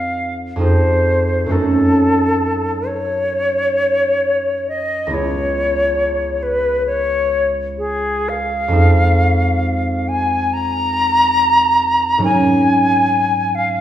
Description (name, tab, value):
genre	classical, impressionist duo for flute and harp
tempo	67 BPM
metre	4/4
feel	uneven beats, rubato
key	unclear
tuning	A4 = 440 Hz
part	concert flute	melody	0.0-13.8 s	Ab4 to Bb5	-16 LUFS	left 1 dB	none
part	concert harp	accompaniment	0.0-13.8 s	Db2 to Bb4	-18 LUFS	right 1 dB	none
room	wet recital hall reverb, RT60 1.6 s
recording	heard from further back in the room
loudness	-14 LUFS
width	side -11 dB against mid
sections	0.0-13.8 A section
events	none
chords	0.0 Fm7; 1.5 Gbm6; 5.1 Dbm7; 8.7 Fm7; 12.3 Ab9sus4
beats	0.62 | 1.53 2.43 3.34 4.25 | 5.14 6.00 6.86 7.79 | 8.75 9.64 10.54 11.40 | 12.26 13.11